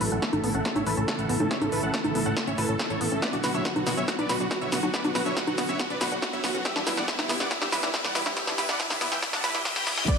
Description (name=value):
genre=uplifting trance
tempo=140 BPM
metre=4/4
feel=straight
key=unclear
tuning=A4 = 440 Hz
part: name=big supersaw lead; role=melody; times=0.0-10.2 s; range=E4 to B5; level=-31 LUFS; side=equal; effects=cassette tape, sidechain pumping, low-pass filter, digital delay
part: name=lush unison pad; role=sustained chords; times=0.0-10.2 s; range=C#3 to G4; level=-32 LUFS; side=right 1 dB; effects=chorus, sidechain pumping
part: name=tight sequenced synth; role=arpeggios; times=0.0-10.1 s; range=B3 to B4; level=-33 LUFS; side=equal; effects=chorus, sidechain pumping, digital delay
part: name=plucky analog bass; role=bass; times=0.0-10.0 s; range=E1 to A2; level=-35 LUFS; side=equal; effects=sidechain pumping
part: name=big-room dance drum kit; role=drums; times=0.0-10.2 s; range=congas, crash cymbal, hi-hat, shaker, snare drum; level=-28 LUFS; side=equal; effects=high-pass filter on snare, high-pass filter on hats, high-pass filter on perc, high-pass filter on cymbals, high-pass filter on room
part: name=riser, reverse cymbal and downlifter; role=sound effects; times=2.8-10.2 s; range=none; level=-37 LUFS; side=left 3 dB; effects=none
part: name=electronic kick drum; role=drums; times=0.2-10.2 s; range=none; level=-32 LUFS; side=equal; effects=high-pass filter on kick
part: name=wide unison pluck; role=second line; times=10.1-10.2 s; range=D5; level=-31 LUFS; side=right 2 dB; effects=sidechain pumping
room=moderate scoring stage reverb, RT60 1.7 s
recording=high-pass filter, lossy compression artefacts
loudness=-24 LUFS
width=side -6 dB against mid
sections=0.0-10.1 A section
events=build-up 0.0-10.1; drum fill 0.0-10.1; filter sweep on supersaw synth 0.0-10.1; filter sweep on synth arpeggio sound 0.0-10.1; filter sweep 0.0-10.1; reverse cymbal 9.2-10.1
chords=0.0 A; 3.2 Bm; 6.7 Em